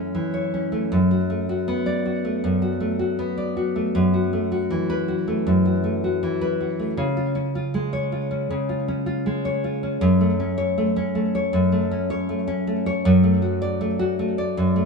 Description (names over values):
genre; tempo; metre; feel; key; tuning
pop; 79 BPM; 4/4; straight; F# minor; A4 = 440 Hz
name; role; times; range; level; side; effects
nylon-string guitar; solo; 0.0-14.9 s; F#2 to D5; -20 LUFS; equal; digital delay
room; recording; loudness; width
moderate stone room reverb, RT60 1.0 s; band playing live in one room; -20 LUFS; side -4 dB against mid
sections
0.0-10.0 A section; 10.0-14.9 B section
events
none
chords
0.0 F#m7; 0.9 Bm7/F#; 3.9 Esus4/F#; 7.0 C#; 10.0 F#m; 13.1 D/F#